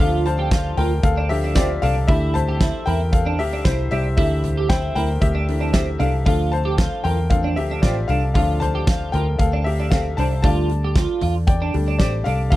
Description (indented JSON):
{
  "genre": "piano-driven pop",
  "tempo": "115 BPM",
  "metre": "4/4",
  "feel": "straight",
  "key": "D minor",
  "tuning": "A4 = 440 Hz",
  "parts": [
    { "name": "clear concert grand piano", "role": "accompaniment", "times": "0.0-12.6 s", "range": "E3 to A5", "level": "-24 LUFS", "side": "left 3 dB", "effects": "none" },
    { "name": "twelve-string electric guitar", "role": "riff", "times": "0.0-12.6 s", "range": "C4 to G4", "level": "-27 LUFS", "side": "right 5 dB", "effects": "analog chorus" },
    { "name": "vintage muted fingered electric bass", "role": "bass", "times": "0.0-12.6 s", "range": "A1 to E2", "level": "-22 LUFS", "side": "equal", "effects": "none" },
    { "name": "huge arena drum kit", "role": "drums", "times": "0.3-12.6 s", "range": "hi-hat, kick drum, snare drum, toms", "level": "-21 LUFS", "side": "equal", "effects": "none" }
  ],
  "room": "little or no reverb",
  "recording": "dry, close 1970s-style studio recording",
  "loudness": "-17 LUFS",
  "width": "side -16 dB against mid",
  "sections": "0.0-12.6 A section",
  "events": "grand piano solo 0.0-12.6",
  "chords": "0.0 Dm",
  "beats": "| 0.00 0.52 1.04 1.56 | 2.09 2.61 3.13 3.65 | 4.17 4.70 5.22 5.74 | 6.26 6.78 7.30 7.83 | 8.35 8.87 9.39 9.91 | 10.43 10.96 11.48 12.00 | 12.52"
}